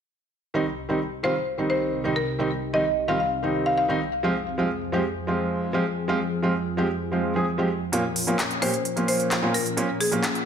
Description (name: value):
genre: EDM, festival progressive house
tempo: 130 BPM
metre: 4/4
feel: straight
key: unclear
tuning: A4 = 440 Hz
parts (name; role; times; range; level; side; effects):
- felt-muted upright piano; accompaniment; 0.5-10.2 s; Bb2 to Ab4; -25 LUFS; right 1 dB; vintage 12-bit sampler grit, digital delay
- lush unison pad; sustained chords; 0.5-10.5 s; C2 to Bb4; -31 LUFS; left 1 dB; chorus
- buzzing marimba with hard mallets; melody; 1.2-4.2, 8.6-10.2 s; Ab4 to F5; -26 LUFS; left 1 dB; digital delay
- big-room dance drum kit; drums; 7.9-10.4 s; handclaps, hi-hat; -26 LUFS; equal; overdrive
room: moderate digital room reverb, RT60 1.1 s, small room reverb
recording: none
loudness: -22 LUFS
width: side -8 dB against mid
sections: 0.5-10.5 A section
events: filter sweep on analog synth pad 0.5-10.5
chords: 0.5 Cm; 4.2 Fm; 7.9 Bbm